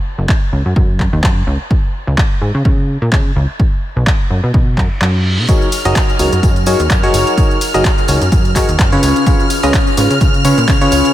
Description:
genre	piano house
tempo	127 BPM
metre	4/4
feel	swing 56% on 16ths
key	F# major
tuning	A4 = 441 Hz
part	plucky analog bass	bass	0.2-11.0 s	F#1 to C#3	-15 LUFS	equal	sidechain pumping
part	electronic kick drum	drums	0.3-10.8 s	none	-13 LUFS	equal	none
part	punchy analog drum machine	drums	0.3-11.1 s	handclaps, hi-hat, shaker	-21 LUFS	equal	none
part	reverse cymbal	sound effects	4.8-5.5 s	none	-26 LUFS	right 1 dB	none
part	string machine, violins	sustained chords	5.5-11.1 s	E#6	-21 LUFS	equal	ensemble chorus, sidechain pumping
part	barking FM electric piano	riff	5.5-11.1 s	C#3 to D#5	-14 LUFS	equal	chorus, sidechain pumping, diffuse ambient delay
part	tambourine	percussion	5.5-11.1 s	none	-30 LUFS	right 1 dB	none
room	light reverb, digital ambience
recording	none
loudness	-11 LUFS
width	side -13 dB against mid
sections	0.0-11.1 A section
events	reverse cymbal 4.8-5.5; kick drops out 5.0-5.5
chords	0.0 F#5; 1.5 C#5; 3.6 B5; 5.5 F#69; 9.0 C#7

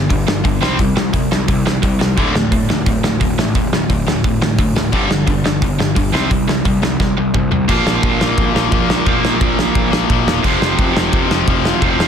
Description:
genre	punk rock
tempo	174 BPM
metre	4/4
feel	straight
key	unclear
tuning	A4 = 439 Hz
part	biting overdriven guitar	riff	0.0-12.1 s	D2 to C4	-20 LUFS	right 11 dB	none
part	distorted electric guitar	riff	0.0-12.1 s	D2 to C4	-19 LUFS	left 11 dB	overdrive
part	fuzz picked electric bass	bass	0.0-12.1 s	D1 to C2	-21 LUFS	equal	overdrive
part	loose indie drum kit	drums	0.1-12.1 s	crash cymbal, hi-hat, kick drum, ride cymbal, snare drum, toms	-17 LUFS	equal	none
room	light reverb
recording	dense, heavily limited modern master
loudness	-13 LUFS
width	side -8 dB against mid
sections	0.0-7.7 A section; 7.7-12.1 B section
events	drum fill 7.0-7.7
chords	0.0 G5; 0.6 C5; 2.2 D5; 4.9 G5; 6.1 C5; 7.7 Bb5; 10.4 F5

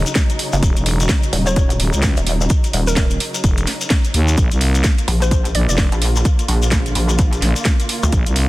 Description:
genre	bass house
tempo	128 BPM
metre	4/4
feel	swing 60% on 16ths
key	unclear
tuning	A4 = 440 Hz
part	warm symphonic string section	sustained chords	0.0-8.5 s	Db3 to F4	-27 LUFS	equal	sidechain pumping, low-pass filter
part	growling FM bass	bass	0.0-8.5 s	Eb1 to Eb2	-16 LUFS	equal	tube saturation, sidechain pumping
part	downlifter	sound effects	0.1-0.6 s	none	-40 LUFS	right 3 dB	none
part	garage drum kit	drums	0.1-8.5 s	hi-hat, snare drum	-22 LUFS	equal	none
part	shekere	percussion	0.1-8.3 s	none	-28 LUFS	left 4 dB	none
part	electronic kick drum	drums	0.2-8.2 s	none	-16 LUFS	equal	overdrive
part	pulsing pluck wobble bass	bass	0.5-8.1 s	Eb1 to D2	-17 LUFS	equal	chorus, tube saturation, sidechain pumping
part	hollow square pluck	melody	1.5-5.8 s	Bb4 to D5	-27 LUFS	equal	chorus, digital delay
room	little or no reverb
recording	dense, heavily limited modern master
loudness	-14 LUFS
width	side -18 dB against mid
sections	0.0-8.5 A section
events	none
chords	0.0 Ebm7; 4.4 Bb

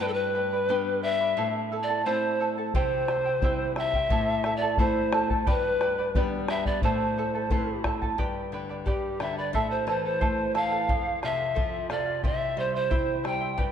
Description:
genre	andean folk, Andean ensemble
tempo	88 BPM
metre	2/4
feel	straight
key	A minor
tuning	A4 = 440 Hz
part	breathy reedy pan flute	melody	0.0-13.6 s	G4 to G5	-27 LUFS	equal	none
part	charango	accompaniment	0.0-13.7 s	E4 to C6	-32 LUFS	right 4 dB	none
part	nylon-string guitar	accompaniment	0.0-13.7 s	F2 to E4	-32 LUFS	left 3 dB	none
part	bombo	percussion	2.7-13.7 s	none	-30 LUFS	equal	none
room	wet scoring stage reverb, RT60 2.1 s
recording	dark, warm production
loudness	-24 LUFS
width	side -8 dB against mid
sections	0.0-8.2 A section; 8.2-13.7 B section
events	none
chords	0.0 G; 1.4 Am; 2.7 C; 4.1 Am; 5.5 G; 6.8 Am; 8.2 G; 9.5 Am; 10.9 F; 12.2 C

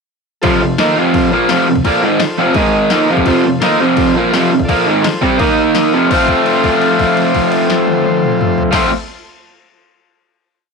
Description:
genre	garage rock duo or trio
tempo	169 BPM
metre	4/4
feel	straight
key	F major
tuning	A4 = 440 Hz
part	overdriven combo organ	sustained chords	0.4-8.9 s	Eb4 to Eb5	-22 LUFS	equal	spring reverb
part	raw garage guitar	riff	0.4-8.9 s	F2 to F4	-11 LUFS	equal	overdrive
part	punchy analog drum machine	drums	0.4-8.8 s	crash cymbal, kick drum, snare drum, toms	-20 LUFS	left 4 dB	none
room	light reverb, digital ambience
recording	1960s-style stereo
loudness	-10 LUFS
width	side -4 dB against mid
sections	0.4-6.1 riff; 6.1-8.9 final chord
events	kick and snare drop out 5.9; held note 6.1-8.7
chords	0.4 F; 2.6 Ab5; 2.9 F; 5.4 Eb5; 5.9 F

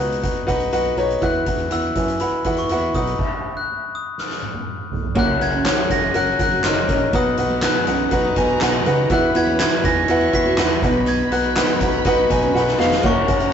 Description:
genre	piano-driven pop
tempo	122 BPM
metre	4/4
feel	straight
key	unclear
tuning	A4 = 441 Hz
part	glockenspiel with brass mallets	melody	0.0-13.5 s	B5 to B6	-25 LUFS	left 2 dB	none
part	clear concert grand piano	accompaniment	0.0-13.5 s	B2 to G#5	-19 LUFS	left 1 dB	none
part	fat analog bass	bass	0.0-13.5 s	E#1 to F#2	-27 LUFS	equal	none
part	soft-mallet drum kit	drums	0.1-13.5 s	crash cymbal, handclaps, hi-hat, kick drum, snare drum, toms	-23 LUFS	right 1 dB	none
part	rich studio violin section	second line	5.2-13.5 s	F#4 to C#6	-30 LUFS	left 2 dB	none
part	picked steel-string acoustic guitar	riff	5.2-13.5 s	A#3 to F#4	-27 LUFS	right 4 dB	none
room	moderate studio ambience, RT60 0.5 s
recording	rough rehearsal-room recording, warm saturation, nothing above 7.9 kHz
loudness	-16 LUFS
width	side -8 dB against mid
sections	0.0-5.2 A section; 5.2-13.0 B section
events	stop 3.2-5.2; drum fill 4.2-5.2, 12.5-13.0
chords	0.0 B; 1.2 Esus2; 2.9 B; 4.2 N.C.; 5.2 F#; 7.1 B; 9.1 Esus2; 10.8 B

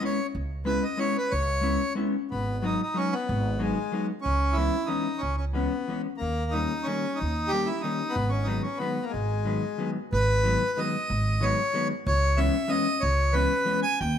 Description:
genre	musette waltz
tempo	185 BPM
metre	3/4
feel	swing 53% on 8ths, rubato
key	G# minor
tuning	A4 = 440 Hz
part	accordion	melody	0.0-14.2 s	G#3 to G#5	-27 LUFS	equal	none
part	vintage hollow-body jazz guitar	accompaniment	0.0-13.8 s	D#3 to E4	-30 LUFS	left 3 dB	none
part	upright bass	bass	0.3-14.2 s	G#1 to D#2	-27 LUFS	right 1 dB	none
room	moderate recital hall reverb, RT60 1.3 s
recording	none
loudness	-24 LUFS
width	side -9 dB against mid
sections	0.0-2.3 A section; 2.3-10.1 B section; 10.1-14.2 B section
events	none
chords	0.0 C#m7; 2.3 G#m7; 4.3 C#m7; 6.2 D#7; 8.2 G#m7; 12.1 C#m7

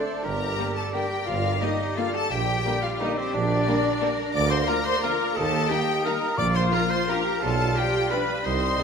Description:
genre	classical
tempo	175 BPM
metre	3/4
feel	uneven beats, rubato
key	G minor, Bb major from 4.3 s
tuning	A4 = 439 Hz
part	rich symphonic violin section	melody	0.0-8.8 s	C5 to D6	-30 LUFS	left 6 dB	none
part	bright clarinet	second line	0.0-8.8 s	C4 to D5	-31 LUFS	left 2 dB	none
part	mellow oboe	second line	0.0-8.8 s	C5 to F5	-34 LUFS	right 1 dB	none
part	mellow bassoon	accompaniment	0.0-8.8 s	G3 to Bb3	-35 LUFS	equal	none
part	rich studio viola section	accompaniment	0.0-8.8 s	C4 to D5	-31 LUFS	right 2 dB	none
part	dark trombone section	sustained chords	0.0-8.8 s	D3 to Bb3	-37 LUFS	right 1 dB	none
part	mellow French horn section	sustained chords	0.0-8.8 s	Bb3 to Bb4	-37 LUFS	left 4 dB	none
part	rich studio cello section	bass	0.0-8.8 s	D4 to Bb4	-34 LUFS	right 2 dB	none
part	small flute group	second line	0.2-8.8 s	C5 to D6	-32 LUFS	left 3 dB	none
part	clear tuba	bass	0.2-8.7 s	G1 to Eb2	-32 LUFS	right 4 dB	none
part	rich studio double bass section	bass	0.2-8.7 s	G1 to Eb2	-30 LUFS	right 3 dB	none
part	rich studio violin section	second line	0.6-8.8 s	G3 to F4	-36 LUFS	left 3 dB	none
part	timpani	percussion	6.4-6.9 s	Bb2	-31 LUFS	left 2 dB	none
room	wet concert hall reverb, RT60 1.9 s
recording	none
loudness	-22 LUFS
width	side -6 dB against mid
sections	0.0-8.8 A section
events	none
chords	0.2 Gm; 2.3 Gm/Bb; 4.3 Bb/D; 5.4 Eb; 6.4 Bb; 7.4 G7/B

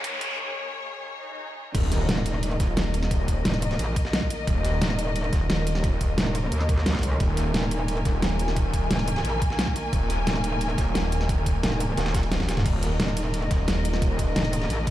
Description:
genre	dark technical drum and bass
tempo	176 BPM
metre	4/4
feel	straight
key	unclear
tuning	A4 = 435 Hz
part	warm studio string section	sustained chords	0.0-14.9 s	Eb3 to Ab5	-31 LUFS	left 1 dB	sidechain pumping
part	dubstep drum kit	drums	0.0-14.9 s	crash cymbal, hi-hat, ride cymbal, snare drum, toms	-29 LUFS	equal	none
part	electronic kick drum	drums	0.0-14.9 s	none	-26 LUFS	equal	high-pass filter on kick
part	riser, swell and impact	sound effects	0.0-3.1 s	none	-32 LUFS	equal	none
part	wide detuned saw bass	bass	1.7-14.3 s	Eb1	-26 LUFS	equal	chorus, tube saturation, sidechain pumping
part	breakbeat sampler-style drum kit	drums	1.7-14.9 s	ride cymbal, snare drum	-37 LUFS	equal	high-pass filter on cymbals, high-pass filter on snare
part	metallic wobble bass	bass	2.1-14.9 s	Eb1 to Eb2	-25 LUFS	equal	chorus, tube saturation
room	digital ambience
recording	played on a big sound system in a bare room, stone room reverb, high-pass filter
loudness	-22 LUFS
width	side -14 dB against mid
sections	0.0-1.7 A section; 1.7-14.9 B section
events	build-up 0.0-1.7; drum fill 0.0-0.4, 12.3-12.7; riser 0.0-0.4; filter sweep 0.0-1.7; break 0.4-1.7; swell 1.1-1.7; drop 1.7-14.9; impact 1.7-3.1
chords	0.0 Eb5

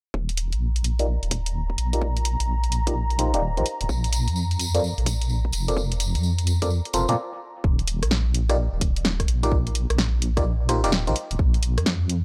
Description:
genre	UK garage, two-step garage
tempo	128 BPM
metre	4/4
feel	swing 64% on 16ths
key	Eb lydian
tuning	A4 = 440 Hz
part	warm analog pad	sustained chords	0.1-7.7 s	Bb5	-37 LUFS	equal	chorus, sidechain pumping
part	deep soft wobble bass	bass	0.1-12.2 s	Eb1 to Bb2	-26 LUFS	equal	chorus
part	electronic kick drum	drums	0.1-11.5 s	none	-27 LUFS	equal	high-pass filter on kick
part	house drum kit	drums	0.3-12.2 s	hi-hat, rim click, snare drum	-29 LUFS	equal	none
part	FM electric piano	stabs	1.0-11.1 s	C4 to D5	-29 LUFS	equal	chorus, phaser, low-pass filter, tape echo
part	tambourine	percussion	3.9-7.2 s	none	-36 LUFS	equal	none
room	digital ambience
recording	dry, gritty hardware recording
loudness	-24 LUFS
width	mono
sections	0.1-7.6 A section; 7.6-12.2 B section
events	break 7.2-7.6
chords	0.1 Ebadd9; 3.9 Bbmaj7sus2; 7.6 Ebadd9; 11.4 Bb5

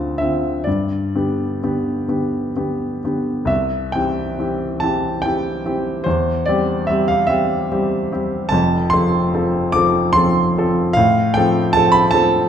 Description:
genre	classical, romantic nocturne for solo piano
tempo	41-53 BPM (dotted quarters)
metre	12/8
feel	rubato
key	C major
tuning	A4 = 440 Hz
part	warm baby grand piano	solo	0.0-12.5 s	F1 to D6	-16 LUFS	equal	none
room	wet recital hall reverb, RT60 1.3 s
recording	minimal, uncompressed stereo recording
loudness	-16 LUFS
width	side -8 dB against mid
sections	0.0-12.5 A section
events	none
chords	0.0 Dm7; 0.7 G; 3.5 C; 6.1 C/E; 8.5 F; 11.0 F/A

